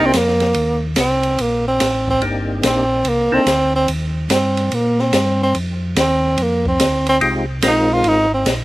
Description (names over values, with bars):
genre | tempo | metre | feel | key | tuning
soul jazz organ trio | 144 BPM | 4/4 | swing 65% on 8ths | C minor | A4 = 444 Hz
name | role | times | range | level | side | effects
percussive tonewheel organ | melody | 0.0-3.5, 7.2-8.3 s | Ab3 to Bb4 | -18 LUFS | left 2 dB | slow rotary speaker, chorus vibrato
warm tenor saxophone | melody | 0.0-8.5 s | Bb3 to F4 | -16 LUFS | right 1 dB | none
mellow tonewheel organ | bass | 0.0-8.6 s | G1 to Bb2 | -21 LUFS | equal | slow rotary speaker
open jazz drum kit | drums | 0.1-8.6 s | hi-hat, kick drum, ride cymbal, snare drum | -22 LUFS | equal | none
room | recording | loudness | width
little or no reverb | recorded outdoors, with no room sound | -14 LUFS | side -17 dB against mid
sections
0.0-8.6 A section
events
tenor saxophone solo 0.0-8.6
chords
0.0 Cm7; 5.6 Fm7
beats
0.14 | 0.55 0.97 1.39 1.80 | 2.22 2.64 3.05 3.47 | 3.89 4.30 4.72 5.13 | 5.55 5.97 6.38 6.80 | 7.22 7.63 8.05 8.46